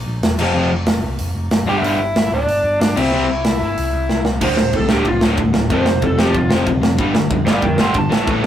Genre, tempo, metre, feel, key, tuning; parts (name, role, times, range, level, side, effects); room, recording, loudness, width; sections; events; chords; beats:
punk rock; 186 BPM; 4/4; straight; A4 = 442 Hz
overdriven picked electric bass; bass; 0.0-8.5 s; D1 to F2; -23 LUFS; equal
big rock drum kit; drums; 0.2-8.5 s; crash cymbal, hi-hat, kick drum, ride cymbal, snare drum; -19 LUFS; equal
cranked stack guitar; riff; 0.4-8.5 s; D2 to C4; -20 LUFS; left 4 dB; overdrive
distorted electric guitar; riff; 0.4-8.5 s; D2 to C4; -20 LUFS; right 2 dB; overdrive
lead guitar through a small cranked amp; melody; 1.7-8.3 s; D4 to C6; -20 LUFS; equal; overdrive
light reverb; rough rehearsal-room recording; -14 LUFS; side -10 dB against mid
0.0-4.4 A section; 4.4-8.5 B section
half time 0.0-4.4; drum fill 4.1-4.4; lead electric guitar solo 4.4-8.5
0.4 F5; 1.7 G5; 3.0 C; 4.4 D5; 5.7 F5; 7.0 G5
0.24 | 0.56 0.88 1.20 1.52 | 1.85 2.17 2.49 2.81 | 3.13 3.46 3.78 4.10 | 4.42 4.74 5.07 5.39 | 5.71 6.03 6.36 6.68 | 7.00 7.32 7.64 7.96 | 8.29